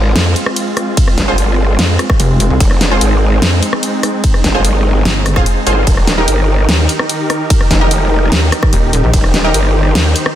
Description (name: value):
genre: heavy wobble dubstep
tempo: 147 BPM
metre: 4/4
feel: half-time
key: F minor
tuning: A4 = 440 Hz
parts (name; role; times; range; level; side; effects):
- supersaw chords; sustained chords; 0.0-10.4 s; Eb3 to C5; -18 LUFS; equal; sidechain pumping, low-pass filter
- growl bass; bass; 0.0-10.1 s; Eb1 to F2; -13 LUFS; equal; chorus, overdrive
- big-room dance drum kit; drums; 0.2-10.3 s; hi-hat, ride cymbal, rim click, snare drum; -16 LUFS; equal; soft clipping on snare
- electronic kick drum; drums; 1.0-9.2 s; none; -12 LUFS; equal; none
- orchestra-hit-like synth stab; stabs; 1.3-9.6 s; Eb4 to C5; -20 LUFS; right 1 dB; built-in reverb, ping-pong delay
- pulsing pluck wobble bass; bass; 2.2-2.6, 5.1-5.4, 8.7-9.1 s; Eb1 to C2; -13 LUFS; equal; chorus, overdrive
room: digital ambience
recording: dense, heavily limited modern master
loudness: -10 LUFS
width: side -12 dB against mid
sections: 0.0-10.4 A section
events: none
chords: 0.0 Fm; 5.9 Eb